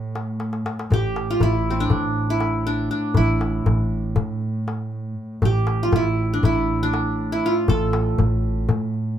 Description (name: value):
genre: Turkish makam ensemble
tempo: 239 BPM (eighths)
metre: 9/8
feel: straight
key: A minor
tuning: A4 = 440 Hz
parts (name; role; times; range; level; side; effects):
- qanun; melody; 0.0-9.2 s; C4 to A4; -23 LUFS; right 1 dB; none
- upright bass; bass; 0.0-9.2 s; A1 to A2; -24 LUFS; right 1 dB; none
- warm double bass; drone; 0.0-9.2 s; A2; -30 LUFS; left 1 dB; none
- darbuka; percussion; 0.2-9.0 s; none; -24 LUFS; left 3 dB; none
room: moderate studio reverb, RT60 0.5 s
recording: none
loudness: -19 LUFS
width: side -10 dB against mid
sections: 0.0-9.2 A section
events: drum fill 0.4-0.9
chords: none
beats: 0.16 0.41 0.66 | 0.91 1.16 1.41 1.66 1.91 2.16 2.42 2.67 2.92 | 3.17 3.42 3.67 3.92 4.17 4.42 4.67 4.92 5.18 | 5.43 5.68 5.93 6.18 6.43 6.68 6.93 7.18 7.43 | 7.69 7.94 8.19 8.44 8.69 8.94